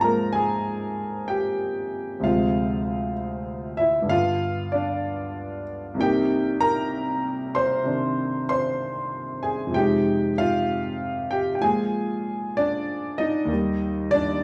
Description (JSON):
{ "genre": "solo jazz", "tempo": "64 BPM", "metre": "4/4", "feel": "swing 66% on 8ths", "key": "unclear", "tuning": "A4 = 440 Hz", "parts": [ { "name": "warm concert grand piano", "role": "solo", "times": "0.0-14.4 s", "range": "C2 to C6", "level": "-25 LUFS", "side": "equal", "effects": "none" } ], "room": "wet large studio reverb, RT60 1.0 s", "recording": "band playing live in one room, studio ambience", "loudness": "-25 LUFS", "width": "mono", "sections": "0.0-14.4 A section", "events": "none", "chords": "0.0 Ab69; 2.2 Dm7b5; 4.1 G7; 6.0 Cm7; 9.7 Fm7; 11.6 Bb7; 13.5 Ebmaj7", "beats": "0.34 1.28 | 2.22 3.16 4.10 5.04 | 5.97 6.92 7.86 8.80 | 9.74 10.68 11.62 12.56 | 13.50" }